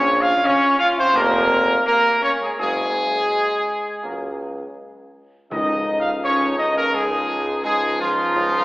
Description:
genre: classical.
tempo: 84 BPM.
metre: 4/4.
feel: straight.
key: Db major.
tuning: A4 = 440 Hz.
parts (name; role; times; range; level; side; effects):
mellow trumpet section; melody; 0.0-8.6 s; F4 to F5; -18 LUFS; equal; none.
mellow French horn section; sustained chords; 0.0-8.6 s; F3 to F4; -25 LUFS; left 1 dB; none.
clear tuba; bass; 0.0-8.6 s; F1 to Db2; -27 LUFS; equal; none.
warm trombone section; sustained chords; 1.1-8.6 s; F3 to Eb4; -28 LUFS; equal; none.
timpani; percussion; 5.5-6.5 s; Db3; -33 LUFS; equal; none.
room: wet concert hall reverb, RT60 1.9 s.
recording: recorded in a church or concert hall, AM radio sound.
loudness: -17 LUFS.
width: side -21 dB against mid.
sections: 0.0-8.6 A section.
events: none.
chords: 0.0 Bb5; 2.6 Gbadd9; 5.5 Dbadd9.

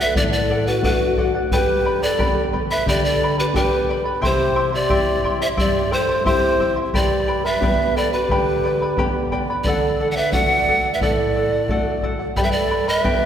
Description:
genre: andean folk, Andean ensemble.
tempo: 88 BPM.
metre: 4/4.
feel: straight.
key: unclear.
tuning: A4 = 439 Hz.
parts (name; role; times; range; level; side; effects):
breathy hollow pan flute; melody; 0.0-13.3 s; B4 to F#5; -21 LUFS; left 1 dB; none.
breathy mellow large quena; second line; 0.0-13.3 s; F#4 to D5; -25 LUFS; right 4 dB; none.
charango; accompaniment; 0.0-13.3 s; E4 to C6; -24 LUFS; left 1 dB; none.
flamenco guitar; accompaniment; 0.0-13.3 s; G2 to G4; -26 LUFS; left 2 dB; none.
bombo; percussion; 0.2-13.2 s; none; -24 LUFS; equal; none.
room: wet concert hall reverb, RT60 2.2 s.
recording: heard from further back in the room.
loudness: -17 LUFS.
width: side -9 dB against mid.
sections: 0.0-13.3 A section.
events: none.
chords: 0.0 D; 1.5 G; 4.2 C; 6.9 G; 9.7 D; 12.4 G.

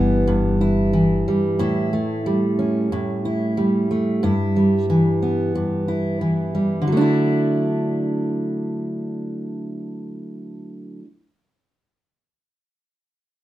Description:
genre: acoustic pop.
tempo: 91 BPM.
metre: 4/4.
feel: swing 60% on 16ths.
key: D major.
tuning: A4 = 440 Hz.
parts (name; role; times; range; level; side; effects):
fingerpicked steel-string acoustic guitar; accompaniment; 0.0-11.1 s; G2 to E4; -19 LUFS; equal; none.
upright bass; bass; 0.0-1.2 s; G1; -24 LUFS; left 1 dB; none.
room: moderate small room reverb, RT60 0.5 s.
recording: minimal, uncompressed stereo recording.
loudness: -18 LUFS.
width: side -14 dB against mid.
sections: 0.0-6.9 A section; 6.9-9.5 B section.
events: none.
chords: 0.0 G6; 1.6 A7; 4.2 G6; 6.9 Dadd9.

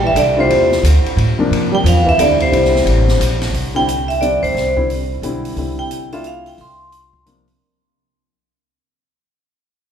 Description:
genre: modal jazz.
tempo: 178 BPM.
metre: 3/4.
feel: swing 63% on 8ths.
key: C mixolydian.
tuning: A4 = 441 Hz.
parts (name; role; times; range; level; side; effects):
vibraphone with medium hard mallets; melody; 0.0-7.2 s; C5 to C6; -17 LUFS; equal; none.
breathy trombone; second line; 0.0-3.2 s; C3 to G3; -22 LUFS; right 2 dB; none.
upright bass; bass; 0.0-7.6 s; A1 to A2; -17 LUFS; equal; none.
open jazz drum kit; drums; 0.2-7.5 s; hi-hat, kick drum, ride cymbal, snare drum; -25 LUFS; equal; none.
warm grand piano; accompaniment; 0.4-7.5 s; C3 to F4; -21 LUFS; left 3 dB; none.
room: wet church reverb, RT60 2.7 s.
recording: recorded in a church or concert hall.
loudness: -13 LUFS.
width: side -8 dB against mid.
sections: 0.0-3.5 A section; 3.5-7.6 B section.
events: fade-out 3.5-7.6.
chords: 0.0 C9; 3.5 Cadd9.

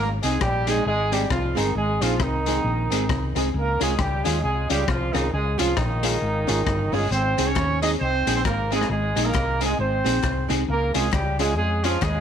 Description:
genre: ska.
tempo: 134 BPM.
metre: 4/4.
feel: swing 59% on 8ths.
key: Ab major.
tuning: A4 = 440 Hz.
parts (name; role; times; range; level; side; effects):
clear horn section; melody; 0.0-12.2 s; Eb3 to Eb5; -24 LUFS; right 2 dB; none.
hollow-body short-scale fingered electric bass; bass; 0.0-12.2 s; G1 to F2; -25 LUFS; equal; none.
archtop guitar, miked and amplified; accompaniment; 0.2-12.1 s; Ab3 to Ab4; -30 LUFS; right 11 dB; none.
tack piano; stabs; 0.2-12.0 s; C4 to Ab4; -31 LUFS; left 11 dB; tape echo.
raw garage drum kit; drums; 0.2-12.1 s; hi-hat, kick drum, rim click; -28 LUFS; left 4 dB; none.
group handclap; percussion; 7.6-12.1 s; none; -42 LUFS; left 11 dB; none.
room: light reverb, studio ambience.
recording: 1960s-style stereo with parts hard left and right.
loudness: -20 LUFS.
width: side -8 dB against mid.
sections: 0.0-12.2 A section.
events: none.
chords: 0.0 Ab; 3.5 Db; 7.1 Ab; 10.7 Db.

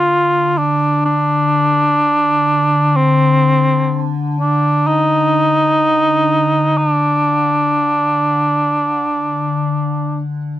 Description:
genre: caucasian folk, Caucasian lament.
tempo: free time.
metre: none.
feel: none.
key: D phrygian.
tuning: A4 = 440 Hz.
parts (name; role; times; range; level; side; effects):
mellow cor anglais; melody; 0.0-10.2 s; C4 to F4; -14 LUFS; right 1 dB; none.
evolving wavetable pad; drone; 0.0-10.6 s; D3; -18 LUFS; left 2 dB; chorus, built-in reverb, phaser.
room: light reverb.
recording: dry, close 1970s-style studio recording.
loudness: -12 LUFS.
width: side -13 dB against mid.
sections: 0.0-10.6 A section.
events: none.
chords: none.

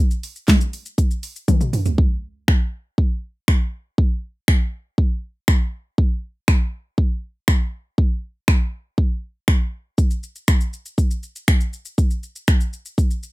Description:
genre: pop.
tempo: 120 BPM.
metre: 4/4.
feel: straight.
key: none.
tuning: none.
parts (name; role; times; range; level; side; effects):
pop drum kit; drums; 0.1-13.3 s; finger snaps, handclaps, hi-hat, kick drum, shaker, snare drum, toms; -16 LUFS; equal; none.
room: little or no reverb.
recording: rough home demo mix.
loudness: -19 LUFS.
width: side -19 dB against mid.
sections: 0.0-2.0 A section; 2.0-13.3 B section.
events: drop 0.0-2.0; drum fill 1.5-2.0.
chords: none.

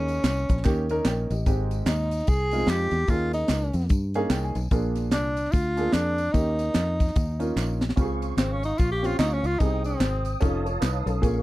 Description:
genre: uptempo gospel.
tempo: 148 BPM.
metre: 4/4.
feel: swing 61% on 8ths.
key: unclear.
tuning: A4 = 441 Hz.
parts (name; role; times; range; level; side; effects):
breathy tenor saxophone; melody; 0.0-10.4 s; C4 to Ab4; -27 LUFS; equal; none.
warm upright piano; accompaniment; 0.0-11.4 s; Ab2 to Ab5; -30 LUFS; right 1 dB; none.
fingered electric bass; bass; 0.0-11.4 s; F1 to G2; -27 LUFS; equal; none.
tight funk drum kit; drums; 0.1-11.3 s; hi-hat, kick drum, snare drum; -23 LUFS; equal; none.
tambourine and handclaps; percussion; 0.1-11.3 s; none; -40 LUFS; right 4 dB; none.
mellow tonewheel organ; sustained chords; 8.0-11.4 s; Bb4 to Eb6; -35 LUFS; right 2 dB; fast rotary speaker, chorus vibrato.
room: little or no reverb.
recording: dry, close 1970s-style studio recording.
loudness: -22 LUFS.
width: side -17 dB against mid.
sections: 0.0-11.4 A section.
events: upright piano fill 3.9-4.7; drum fill 7.6-8.0.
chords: 0.0 Eb7sus4; 0.6 Eb7; 1.5 Abmaj7; 3.1 Eb7sus4; 4.7 Bb7; 6.3 Eb7; 8.0 Dbmaj7; 9.6 Abmaj7/C; 10.4 F7b13.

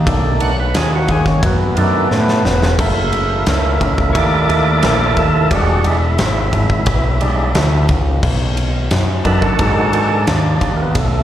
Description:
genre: blues rock power trio and southern rock.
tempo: 88 BPM.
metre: 4/4.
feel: straight.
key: unclear.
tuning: A4 = 441 Hz.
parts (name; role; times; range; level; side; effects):
growling picked electric bass; bass; 0.0-11.2 s; E1 to A2; -16 LUFS; equal; overdrive.
overdriven tonewheel organ; sustained chords; 0.1-11.2 s; D#3 to F#5; -17 LUFS; right 2 dB; slow rotary speaker, plate reverb.
huge arena drum kit; drums; 0.1-11.1 s; crash cymbal, kick drum, ride cymbal, snare drum; -19 LUFS; equal; none.
room: light reverb.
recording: live gig heard through the venue's PA, recital hall reverb.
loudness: -12 LUFS.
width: side -11 dB against mid.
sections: 0.0-11.2 A section.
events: tonewheel organ solo 0.0-11.2; drum fill 2.1-2.8.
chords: 0.0 B7#9; 2.8 F#7#9; 5.5 E7#9; 8.2 B7#9.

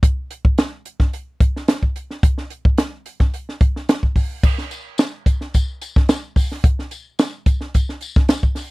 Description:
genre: funk.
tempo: 109 BPM.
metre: 4/4.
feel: straight.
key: none.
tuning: none.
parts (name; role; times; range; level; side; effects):
compact cocktail drum kit; drums; 0.0-8.7 s; crash cymbal, hi-hat, kick drum, snare drum; -16 LUFS; equal; none.
tambourine; percussion; 4.4-8.7 s; none; -34 LUFS; left 7 dB; none.
room: little or no reverb.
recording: dry, close 1970s-style studio recording.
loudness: -17 LUFS.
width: side -23 dB against mid.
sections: 0.0-4.4 A section; 4.4-8.7 B section.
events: none.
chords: none.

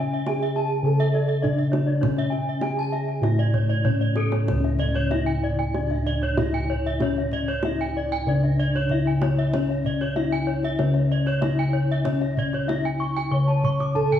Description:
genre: Balinese gamelan.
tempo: 95 BPM.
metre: 4/4.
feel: straight.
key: C# pelog.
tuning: A4 = 440 Hz.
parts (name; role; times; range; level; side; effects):
gamelan-type bronze metallophone; melody; 0.0-14.2 s; C#4 to C#5; -28 LUFS; equal; none.
gamelan-type bronze metallophone; arpeggios; 0.0-14.1 s; A4-20c to C#6; -31 LUFS; left 3 dB; none.
gamelan-type bossed gongs; bass; 0.0-14.2 s; C#2 to D4+20c; -23 LUFS; left 1 dB; none.
gamelan-type bronze metallophone; arpeggios; 0.1-14.2 s; C#5 to D6+20c; -31 LUFS; right 3 dB; none.
kendang; percussion; 0.3-14.2 s; none; -30 LUFS; right 3 dB; none.
room: moderate recital hall reverb, RT60 1.6 s.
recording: worn, warbling old tape, cassette tape, warbly pitch drift.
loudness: -21 LUFS.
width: side -10 dB against mid.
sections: 0.0-4.5 A section; 4.5-14.2 B section.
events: drum fill 4.0-4.5.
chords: none.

